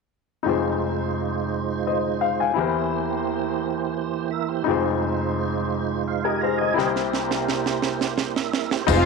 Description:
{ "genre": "slow gospel", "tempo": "57 BPM (dotted quarters)", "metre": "6/8", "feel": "straight", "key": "F minor", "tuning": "A4 = 439 Hz", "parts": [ { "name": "warm upright piano", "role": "accompaniment", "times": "0.4-9.1 s", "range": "F1 to Ab5", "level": "-24 LUFS", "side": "left 9 dB", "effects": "none" }, { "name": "mellow tonewheel organ", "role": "sustained chords", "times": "0.4-9.1 s", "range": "E3 to Bb5", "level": "-26 LUFS", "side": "right 14 dB", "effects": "fast rotary speaker, chorus vibrato" }, { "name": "tight funk drum kit", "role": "drums", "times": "6.8-9.0 s", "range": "crash cymbal, kick drum, snare drum", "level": "-26 LUFS", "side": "right 8 dB", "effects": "none" }, { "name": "dark studio string section", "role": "melody", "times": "8.9-9.1 s", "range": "Ab3 to F4", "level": "-21 LUFS", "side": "right 1 dB", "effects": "none" }, { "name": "fingered electric bass", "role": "bass", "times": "8.9-9.1 s", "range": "F1", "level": "-20 LUFS", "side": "right 2 dB", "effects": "none" }, { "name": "tambourine", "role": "percussion", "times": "8.9-9.1 s", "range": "none", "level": "-32 LUFS", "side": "left 13 dB", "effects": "none" } ], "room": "moderate spring reverb, RT60 1.7 s, small room ambience", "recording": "1960s-style stereo with parts hard left and right", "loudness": "-22 LUFS", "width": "side -4 dB against mid", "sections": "0.5-8.9 A section", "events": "drum fill 6.8-8.9", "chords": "0.5 Fm7; 2.6 C7/E; 4.7 Fm7; 6.8 C7" }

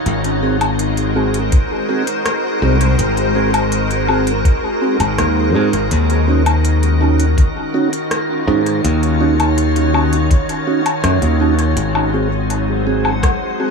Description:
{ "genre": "ambient dub", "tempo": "82 BPM", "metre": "4/4", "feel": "straight", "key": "unclear", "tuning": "A4 = 440 Hz", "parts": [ { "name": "soft additive organ-like pad", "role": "sustained chords", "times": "0.0-13.7 s", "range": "Eb3 to Db5", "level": "-19 LUFS", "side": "left 1 dB", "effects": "ensemble chorus, built-in reverb" }, { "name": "modern bright fingered electric bass", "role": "bass", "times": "0.1-13.2 s", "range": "Ab1 to Ab2", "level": "-16 LUFS", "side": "left 1 dB", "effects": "none" }, { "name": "organic electronic drum kit", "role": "drums", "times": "0.1-13.4 s", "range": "hi-hat, rim click, woodblock", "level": "-23 LUFS", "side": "left 3 dB", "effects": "dub echo" }, { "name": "mellow tonewheel organ", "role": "stabs", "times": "0.4-13.7 s", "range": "C4 to Ab4", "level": "-21 LUFS", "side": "right 4 dB", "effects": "slow rotary speaker, dub echo" }, { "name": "electronic kick drum", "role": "drums", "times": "1.5-13.4 s", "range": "none", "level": "-13 LUFS", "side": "equal", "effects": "none" }, { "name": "backwards swelling texture", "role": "texture", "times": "12.4-13.7 s", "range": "Gb3 to Gb5", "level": "-26 LUFS", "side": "left 4 dB", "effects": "built-in reverb" } ], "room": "light reverb", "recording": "none", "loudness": "-13 LUFS", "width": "side -4 dB against mid", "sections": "0.0-11.8 A section; 11.8-13.7 A section", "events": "none", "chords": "0.1 Ab7; 5.9 Ebm7; 11.8 Ab7" }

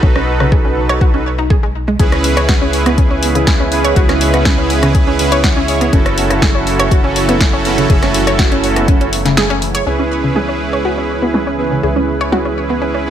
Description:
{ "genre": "progressive house", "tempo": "122 BPM", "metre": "4/4", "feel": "straight", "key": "C# minor", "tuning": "A4 = 441 Hz", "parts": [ { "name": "analog pluck", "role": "arpeggios", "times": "0.0-13.0 s", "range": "C#3 to C#5", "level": "-18 LUFS", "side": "equal", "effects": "chorus, sidechain pumping, digital delay" }, { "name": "soft supersaw", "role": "stabs", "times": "0.0-13.1 s", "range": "C#4 to C#5", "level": "-17 LUFS", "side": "right 3 dB", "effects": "sidechain pumping, digital delay" }, { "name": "tight sequencer bass", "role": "bass", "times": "0.0-13.1 s", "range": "F#1 to C#2", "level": "-20 LUFS", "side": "equal", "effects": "tube saturation, sidechain pumping" }, { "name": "electronic kick drum", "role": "drums", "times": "0.0-9.0 s", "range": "none", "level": "-12 LUFS", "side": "equal", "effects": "none" }, { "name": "deep house drum kit", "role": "drums", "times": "0.2-13.1 s", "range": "cabasa, crash cymbal, hi-hat, rim click, snare drum", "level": "-19 LUFS", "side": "left 1 dB", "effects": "low-pass filter on snare, low-pass filter on hats, low-pass filter on cymbals, low-pass filter on perc, low-pass filter on room" }, { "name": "lush unison pad", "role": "sustained chords", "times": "2.0-13.1 s", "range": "C#3 to E4", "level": "-22 LUFS", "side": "equal", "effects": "chorus, sidechain pumping" } ], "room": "light reverb, digital ambience", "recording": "none", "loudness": "-11 LUFS", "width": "side -10 dB against mid", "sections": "0.0-9.9 A section; 9.9-13.1 B section", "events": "kick drops out 9.4-9.9; filter sweep on drum 9.9-13.1; filter sweep on analog synth pad 9.9-13.1", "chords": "0.0 B7; 2.0 C#m7; 5.9 F#m7; 9.9 C#m7" }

